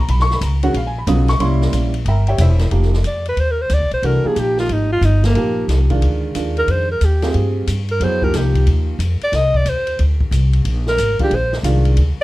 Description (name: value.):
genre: modal jazz.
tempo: 182 BPM.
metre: 4/4.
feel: swing 65% on 8ths.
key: F dorian.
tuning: A4 = 439 Hz.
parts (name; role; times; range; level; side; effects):
warm concert grand piano; accompaniment; 0.0-8.9, 11.2-12.0 s; Db3 to Eb6; -21 LUFS; right 2 dB; none.
upright bass; bass; 0.0-12.2 s; E1 to G2; -16 LUFS; equal; none.
open jazz drum kit; drums; 0.1-12.1 s; hi-hat, kick drum, ride cymbal, snare drum; -26 LUFS; left 1 dB; none.
breathy alto saxophone; melody; 3.1-12.2 s; Bb3 to Eb5; -18 LUFS; equal; none.
room: light reverb.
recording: dark, warm production.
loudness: -14 LUFS.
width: side -18 dB against mid.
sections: 0.0-2.7 A section; 2.7-12.2 A section.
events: alto saxophone solo 2.7-12.2.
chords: 0.0 Abm11; 1.4 C7b9; 2.7 F9sus4.